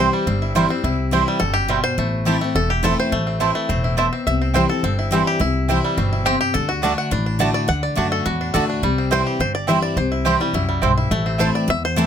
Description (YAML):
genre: bluegrass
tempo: 210 BPM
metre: 4/4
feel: straight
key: C lydian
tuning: A4 = 440 Hz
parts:
  - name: bluegrass banjo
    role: melody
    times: 0.0-12.1 s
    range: D3 to F#5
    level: -23 LUFS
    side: left 1 dB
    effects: none
  - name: picked steel-string acoustic guitar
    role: accompaniment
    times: 0.0-12.1 s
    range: E2 to F#4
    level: -22 LUFS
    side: left 3 dB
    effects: none
  - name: mandolin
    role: stabs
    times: 0.0-12.1 s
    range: A3 to A5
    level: -20 LUFS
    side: right 7 dB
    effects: none
  - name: upright bass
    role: bass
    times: 0.0-12.1 s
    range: E1 to F#2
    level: -23 LUFS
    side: equal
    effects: none
room: little or no reverb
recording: close, detailed microphones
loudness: -17 LUFS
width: side -8 dB against mid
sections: 0.0-12.1 A section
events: five-string banjo solo 0.0-12.1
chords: 0.0 C; 2.0 Am; 4.3 C; 6.5 D; 8.8 C; 11.1 Am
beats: 0.27 0.56 | 0.84 1.13 1.41 1.70 | 1.98 2.27 2.55 2.84 | 3.12 3.41 3.69 3.98 | 4.26 4.55 4.83 5.12 | 5.41 5.69 5.98 6.26 | 6.55 6.83 7.12 7.40 | 7.69 7.97 8.26 8.54 | 8.83 9.12 9.40 9.69 | 9.97 10.26 10.54 10.83 | 11.12 11.40 11.69 11.97